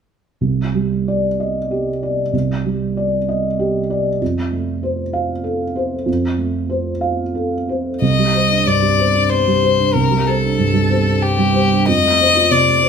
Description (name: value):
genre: neoclassical piano and strings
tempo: 95 BPM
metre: 3/4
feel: rubato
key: C dorian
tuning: A4 = 440 Hz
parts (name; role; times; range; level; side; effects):
- felt-muted upright piano; accompaniment; 0.4-12.9 s; C2 to F5; -17 LUFS; right 2 dB; none
- clear violin; melody; 8.0-12.9 s; G4 to Eb5; -15 LUFS; left 6 dB; none
room: wet large studio reverb, RT60 1.1 s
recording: band playing live in one room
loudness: -15 LUFS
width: side -6 dB against mid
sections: 0.4-8.0 A section; 8.0-12.9 B section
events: none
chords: 0.4 Cmadd9; 4.2 F; 8.0 Csus2; 11.9 F